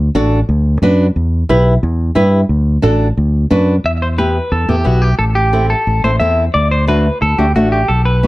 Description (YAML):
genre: latin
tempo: 178 BPM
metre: 4/4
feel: straight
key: unclear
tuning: A4 = 439 Hz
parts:
  - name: fingered electric bass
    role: bass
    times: 0.0-8.3 s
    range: A1 to G2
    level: -13 LUFS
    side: equal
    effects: none
  - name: flamenco guitar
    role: accompaniment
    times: 0.1-8.3 s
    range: A3 to B4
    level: -15 LUFS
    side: equal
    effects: none
  - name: clean electric guitar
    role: melody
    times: 3.9-8.3 s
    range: F#4 to E5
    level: -16 LUFS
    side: equal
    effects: spring reverb, slapback echo
room: light reverb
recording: none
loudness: -11 LUFS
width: side -18 dB against mid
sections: 0.0-3.8 A section; 3.8-8.3 B section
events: none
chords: 0.0 D; 1.2 Em; 2.5 D; 3.8 Em; 5.2 Am; 6.5 D